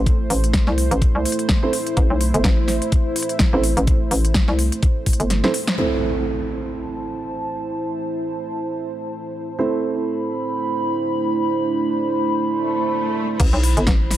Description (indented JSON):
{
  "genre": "bass house",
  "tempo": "126 BPM",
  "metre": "4/4",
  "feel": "swing 57% on 16ths",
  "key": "A minor",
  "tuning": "A4 = 440 Hz",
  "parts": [
    { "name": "dark analog pad", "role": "sustained chords", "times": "0.0-14.2 s", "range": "A3 to C5", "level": "-26 LUFS", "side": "right 1 dB", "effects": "chorus, sidechain pumping" },
    { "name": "hollow knocking FM bass", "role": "bass", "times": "0.0-5.4, 13.4-14.2 s", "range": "G1 to C2", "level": "-19 LUFS", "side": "equal", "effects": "sidechain pumping" },
    { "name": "big-room dance drum kit", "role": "drums", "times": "0.1-5.8, 13.4-14.2 s", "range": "crash cymbal, hi-hat, snare drum", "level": "-24 LUFS", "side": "left 1 dB", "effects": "overdrive, low-pass filter on hats, low-pass filter on snare, low-pass filter on cymbals" },
    { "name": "electronic kick drum", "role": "drums", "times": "0.1-5.2, 13.4-14.0 s", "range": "none", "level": "-18 LUFS", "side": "equal", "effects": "none" },
    { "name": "dark grand piano", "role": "stabs", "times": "1.6-13.4 s", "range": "A3 to C5", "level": "-25 LUFS", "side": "right 3 dB", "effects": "sidechain pumping, low-pass filter, digital delay" },
    { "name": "impact, swell and sub drop", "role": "sound effects", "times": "5.8-7.7, 12.6-14.2 s", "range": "none", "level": "-27 LUFS", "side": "equal", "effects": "none" },
    { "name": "warbly tape-like pad", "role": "texture", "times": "6.7-14.2 s", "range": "E4 to B5", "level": "-23 LUFS", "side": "right 2 dB", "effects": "chorus, built-in reverb, sidechain pumping" }
  ],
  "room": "light reverb",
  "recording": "none",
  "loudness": "-18 LUFS",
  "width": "side -13 dB against mid",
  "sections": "0.0-5.8 A section; 5.8-13.4 B section",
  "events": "kick drops out 5.3-5.8; drum fill 5.3-5.8; band accent 5.7; impact 5.8-7.7, 13.4-14.2; filter sweep on drum 5.8-13.4; swell 12.6-13.4",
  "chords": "0.0 Am"
}